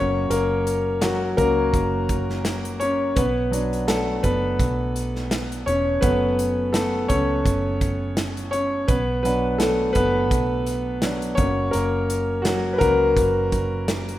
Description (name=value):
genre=piano-driven pop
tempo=84 BPM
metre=4/4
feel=swing 56% on 16ths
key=B minor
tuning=A4 = 440 Hz
part: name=warm grand piano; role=accompaniment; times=0.0-14.2 s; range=F#3 to C#5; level=-21 LUFS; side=left 1 dB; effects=none
part: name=vintage muted fingered electric bass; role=bass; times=0.0-14.2 s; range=E1 to C#2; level=-27 LUFS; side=right 1 dB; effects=none
part: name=modern studio drum kit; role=drums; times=0.3-14.2 s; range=hi-hat, kick drum, snare drum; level=-26 LUFS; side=right 1 dB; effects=none
room=moderate lush hall reverb, RT60 1.8 s, small room ambience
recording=rough home demo mix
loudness=-19 LUFS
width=side -14 dB against mid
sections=0.0-14.2 A section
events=grand piano solo 0.0-14.2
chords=0.0 F#; 3.2 Bm; 6.0 F#m; 8.9 Bm; 11.4 F#